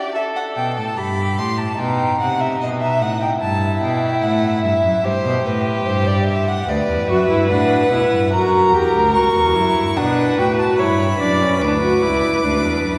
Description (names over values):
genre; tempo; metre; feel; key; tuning
classical, baroque-style fugue for string quartet; 73 BPM; 4/4; straight; E minor; A4 = 440 Hz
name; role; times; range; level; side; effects
rich violin; melody; 0.0-13.0 s; B4 to D6; -24 LUFS; equal; none
warm violin; second line; 0.0-13.0 s; D#4 to D5; -22 LUFS; equal; none
clear cello; bass; 0.6-13.0 s; C#2 to C3; -24 LUFS; equal; none
warm viola; accompaniment; 7.1-13.0 s; C#4 to G4; -21 LUFS; equal; none
room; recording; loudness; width
wet cathedral reverb, RT60 4.7 s; recorded in a church or concert hall; -18 LUFS; mono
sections
0.0-13.0 A section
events
none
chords
0.2 Em (rootless); 1.8 B7; 3.4 Em/G; 6.7 Bm/D; 8.3 F#7; 10.0 Bm